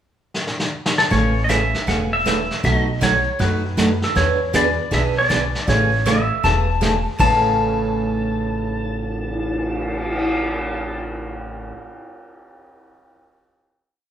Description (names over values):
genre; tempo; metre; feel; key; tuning
country, western swing; 158 BPM; 4/4; swing 64% on 8ths; A major; A4 = 440 Hz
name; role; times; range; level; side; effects
vintage brush drum kit; drums; 0.3-10.2 s; brushed snare drum, crash cymbal, cymbal swell, hi-hat, kick drum, snare drum; -24 LUFS; equal; none
clean lap steel guitar; melody; 1.0-11.0 s; A4 to A5; -21 LUFS; left 1 dB; none
picked steel-string acoustic guitar; accompaniment; 1.1-11.7 s; A2 to G#4; -23 LUFS; right 3 dB; none
upright bass; bass; 1.1-11.7 s; E1 to F#2; -24 LUFS; equal; none
room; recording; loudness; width
moderate large studio reverb, RT60 1.2 s; band playing live in one room; -17 LUFS; side -9 dB against mid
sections
0.0-1.1 pickup bar; 1.1-7.2 A section; 7.2-10.2 final chord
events
drum fill 0.3-1.1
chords
0.0 N.C.; 1.1 Amaj7; 2.6 B7; 4.2 E7; 5.7 Amaj7; 7.2 A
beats
0.35 0.73 | 1.11 1.49 1.87 2.25 | 2.63 3.02 3.40 3.78 | 4.16 4.54 4.92 5.30 | 5.68 6.06 6.44 6.82 | 7.20 7.58 7.96 8.34 | 8.72 9.10 9.48 9.86